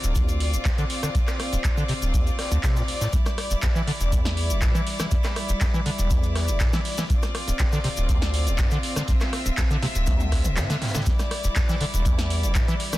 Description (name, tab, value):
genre	acid house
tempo	121 BPM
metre	4/4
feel	straight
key	unclear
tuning	A4 = 440 Hz
part	rich chamber string section	sustained chords	0.0-13.0 s	G3 to E5	-31 LUFS	left 1 dB	sidechain pumping
part	acid bass, square	riff	0.0-13.0 s	D1 to E3	-25 LUFS	equal	tube saturation, lush chorus
part	electro analog drum machine	drums	0.0-13.0 s	handclaps, hi-hat, rim click, snare drum, toms	-31 LUFS	equal	none
part	tube shaker	percussion	0.0-13.0 s	none	-36 LUFS	left 4 dB	none
part	electronic kick drum	drums	0.2-12.7 s	none	-23 LUFS	equal	none
part	street-band drum kit	drums	0.2-13.0 s	hi-hat, snare drum	-40 LUFS	equal	none
room	small room reverb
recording	dense, heavily limited modern master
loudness	-21 LUFS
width	side -16 dB against mid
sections	0.0-13.0 A section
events	drum fill 10.1-11.1; break 10.6-11.1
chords	0.0 Dm7; 3.1 Em7; 7.1 Dm7; 11.1 Em7